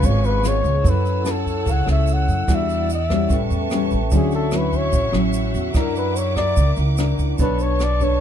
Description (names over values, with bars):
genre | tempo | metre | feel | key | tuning
bossa nova | 147 BPM | 4/4 | straight | F# minor | A4 = 440 Hz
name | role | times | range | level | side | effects
breathy flugelhorn | melody | 0.0-8.2 s | G#4 to F#5 | -23 LUFS | left 3 dB | none
nylon-string guitar | accompaniment | 0.0-8.2 s | Ab2 to C#5 | -24 LUFS | left 3 dB | none
vibraphone with medium mallets | accompaniment | 0.0-8.2 s | Db4 to A5 | -29 LUFS | right 4 dB | none
warm studio string section | sustained chords | 0.0-8.2 s | C#4 to E6 | -32 LUFS | equal | none
upright bass | bass | 0.0-8.2 s | Ab1 to F#2 | -21 LUFS | right 1 dB | none
jazz brush drum kit | drums | 0.0-8.1 s | hi-hat, kick drum, rim click | -23 LUFS | right 1 dB | none
egg shaker | percussion | 0.0-8.2 s | none | -38 LUFS | right 9 dB | none
room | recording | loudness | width
little or no reverb | dark, warm production | -17 LUFS | side -9 dB against mid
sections
0.8-8.2 A section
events
flugelhorn solo 0.0-8.2; vibraphone fill 3.3-4.1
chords
0.0 Db7; 0.8 F#m7; 2.5 Em9; 3.3 A9; 4.1 Dmaj9; 5.8 F#7b13; 7.4 Bm9